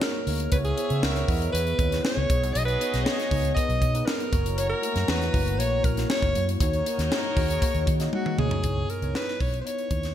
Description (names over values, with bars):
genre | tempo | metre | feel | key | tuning
polished 1980s jazz-funk pop | 118 BPM | 4/4 | straight | C# dorian | A4 = 440 Hz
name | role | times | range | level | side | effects
breathy alto saxophone | melody | 0.0-10.1 s | F#4 to D#5 | -29 LUFS | equal | none
warm horn section | second line | 0.0-8.3 s | B3 to A#5 | -35 LUFS | right 1 dB | none
mellow tine electric piano | accompaniment | 0.0-10.1 s | A3 to E5 | -32 LUFS | left 3 dB | analog chorus
crisp fusion drum kit | drums | 0.0-10.1 s | hi-hat, kick drum, snare drum, toms | -27 LUFS | equal | gated reverb
vintage muted fingered electric bass | bass | 0.3-10.1 s | F#1 to D#3 | -27 LUFS | equal | none
room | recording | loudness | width
light reverb, small room ambience | bright 1980s-style digital production | -22 LUFS | side -10 dB against mid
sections
0.0-8.6 A section; 8.6-10.1 B section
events
drum fill 8.1-8.6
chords
0.0 D#m7; 0.5 C#m7; 2.3 B69; 4.3 F#7; 6.6 D#m7; 8.6 C#m9